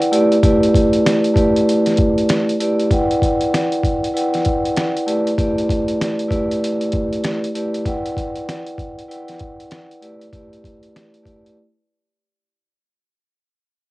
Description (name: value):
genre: hip hop, boom-bap hip-hop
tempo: 97 BPM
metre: 4/4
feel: swing 63% on 16ths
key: unclear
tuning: A4 = 440 Hz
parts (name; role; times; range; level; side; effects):
- vibraphone with medium mallets; accompaniment; 0.0-11.6 s; A3 to G5; -17 LUFS; equal; cassette tape, high-pass filter, low-pass filter
- trip hop sampler-style drum kit; drums; 0.0-11.6 s; hi-hat, kick drum, snare drum; -21 LUFS; equal; cassette tape
room: light reverb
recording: home recording on cassette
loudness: -15 LUFS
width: side -20 dB against mid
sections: 0.0-12.8 A section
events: fade-out 0.0-12.8; break 11.6-12.8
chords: 0.1 A7sus4; 2.9 Em9; 5.1 A7sus4; 7.9 Em9; 10.0 A7sus4